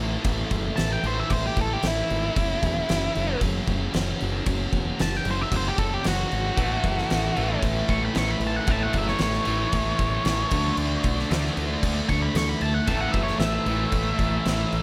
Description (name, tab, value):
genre	quiet-loud alternative rock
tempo	114 BPM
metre	4/4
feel	straight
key	A major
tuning	A4 = 439 Hz
part	thick fuzz guitar	riff	0.0-14.8 s	F#2 to D4	-33 LUFS	equal	distortion
part	growling fingered electric bass	bass	0.0-14.8 s	E1 to D2	-31 LUFS	equal	overdrive
part	oversized low-tuned drum kit	drums	0.2-14.8 s	crash cymbal, kick drum, snare drum	-30 LUFS	equal	none
part	octave-fuzz lead guitar	melody	0.8-14.8 s	E4 to C#6	-31 LUFS	equal	distortion, digital delay
part	overdriven semi-hollow guitar	riff	6.6-14.8 s	A2 to D4	-32 LUFS	equal	none
room	light reverb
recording	none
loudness	-24 LUFS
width	mono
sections	0.0-14.8 A section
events	lead electric guitar solo 0.0-14.8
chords	0.0 A5; 2.4 F#5; 6.6 A; 10.5 D5; 12.9 A5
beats	| 0.24 0.77 1.30 1.83 | 2.36 2.88 3.41 3.94 | 4.47 4.99 5.52 6.05 | 6.57 7.10 7.62 8.15 | 8.68 9.20 9.73 10.25 | 10.78 11.30 11.83 12.35 | 12.88 13.40 13.93 14.46